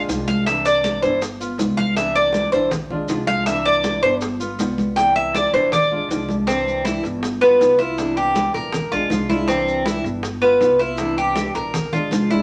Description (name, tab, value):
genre	latin, Cuban son and guajira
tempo	160 BPM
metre	4/4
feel	straight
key	C major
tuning	A4 = 440 Hz
part	flamenco guitar	accompaniment	0.0-12.4 s	C3 to F4	-29 LUFS	equal	none
part	upright bass	bass	0.0-12.4 s	G1 to C2	-34 LUFS	equal	none
part	bongos	percussion	0.1-12.4 s	none	-32 LUFS	equal	none
part	congas	percussion	0.1-12.4 s	none	-28 LUFS	equal	none
part	maracas	percussion	0.1-12.4 s	none	-39 LUFS	equal	none
part	Cuban tres	arpeggios	0.3-12.4 s	B3 to G5	-20 LUFS	equal	none
room	moderate studio reverb, RT60 0.8 s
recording	none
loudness	-19 LUFS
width	mono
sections	0.0-6.5 A section; 6.5-12.4 B section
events	Cuban tres solo 0.0-6.5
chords	0.5 Cadd9; 1.2 G7; 2.0 Cadd9; 2.7 Bb7; 3.5 Cadd9; 4.2 G7; 5.0 Cadd9; 5.7 Bb7; 6.5 Cadd9; 7.2 G7; 8.0 Cadd9; 8.7 Bb7; 9.5 Cadd9; 10.2 G7; 11.0 Cadd9; 11.7 Bb7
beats	0.09 | 0.47 0.84 1.22 1.59 | 1.97 2.35 2.72 3.10 | 3.47 3.85 4.22 4.60 | 4.97 5.35 5.73 6.10 | 6.48 6.85 7.23 7.61 | 7.98 8.36 8.73 9.11 | 9.48 9.86 10.24 10.61 | 10.99 11.37 11.74 12.12